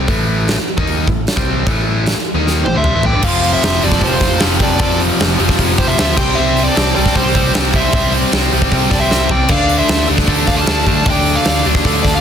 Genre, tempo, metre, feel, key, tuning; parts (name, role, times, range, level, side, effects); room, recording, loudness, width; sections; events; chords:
hard rock; 153 BPM; 4/4; straight; A4 = 439 Hz
biting overdriven guitar; riff; 0.0-12.2 s; F2 to D#4; -18 LUFS; left 1 dB
overdriven picked electric bass; bass; 0.0-12.2 s; F1 to D#2; -19 LUFS; equal
huge arena drum kit; drums; 0.1-12.1 s; crash cymbal, hi-hat, kick drum, snare drum, toms; -16 LUFS; equal
octave-fuzz lead guitar; second line; 2.6-12.2 s; F4 to F5; -24 LUFS; right 4 dB; distortion
dark smooth lead guitar; melody; 2.7-12.2 s; C5 to A5; -19 LUFS; equal; overdrive
distorted electric guitar; riff; 3.2-12.2 s; F2 to D4; -20 LUFS; left 1 dB; overdrive
small room ambience; dense, heavily limited modern master; -12 LUFS; side -8 dB against mid
0.0-3.2 A section; 3.2-12.2 B section
drum fill 2.4-3.2, 9.1-9.5
0.0 Am; 3.2 F5; 6.2 C; 9.5 D5